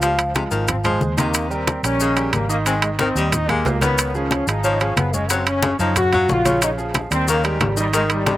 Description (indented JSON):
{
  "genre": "latin, salsa",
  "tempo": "182 BPM",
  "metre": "4/4",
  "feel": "straight",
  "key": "unclear",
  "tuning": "A4 = 440 Hz",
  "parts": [
    { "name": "bright trombone section", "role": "melody", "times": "0.0-8.4 s", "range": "F3 to Gb4", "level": "-22 LUFS", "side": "left 1 dB", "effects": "slapback echo" },
    { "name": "warm baritone saxophone", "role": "second line", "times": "0.0-8.3 s", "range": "C3 to Ab3", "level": "-24 LUFS", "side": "left 3 dB", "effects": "slapback echo" },
    { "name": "bright grand piano", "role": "accompaniment", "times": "0.0-8.4 s", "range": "Db3 to F5", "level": "-24 LUFS", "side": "right 3 dB", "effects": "slapback echo" },
    { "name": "vintage muted fingered electric bass", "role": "bass", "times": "0.0-8.4 s", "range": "Gb1 to Gb2", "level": "-24 LUFS", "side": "equal", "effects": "none" },
    { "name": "congas", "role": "percussion", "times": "0.0-8.4 s", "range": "none", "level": "-26 LUFS", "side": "left 2 dB", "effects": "none" },
    { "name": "maracas", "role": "percussion", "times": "0.0-8.4 s", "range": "none", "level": "-28 LUFS", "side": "left 6 dB", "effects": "none" },
    { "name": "timbales", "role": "percussion", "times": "0.0-8.4 s", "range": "none", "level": "-23 LUFS", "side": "right 4 dB", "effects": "slapback echo" },
    { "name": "bongos", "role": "percussion", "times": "5.3-8.4 s", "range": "none", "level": "-30 LUFS", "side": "left 5 dB", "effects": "slapback echo" }
  ],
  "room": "little or no reverb",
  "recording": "recorded outdoors, with no room sound",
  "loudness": "-17 LUFS",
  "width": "side -14 dB against mid",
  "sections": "0.0-8.4 A section",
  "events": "none",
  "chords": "0.0 Dbmaj9; 1.3 Eb7; 2.7 Abmaj9; 4.0 Dbadd9; 5.3 Gbmaj7; 6.6 Bbm7; 7.3 Eb7"
}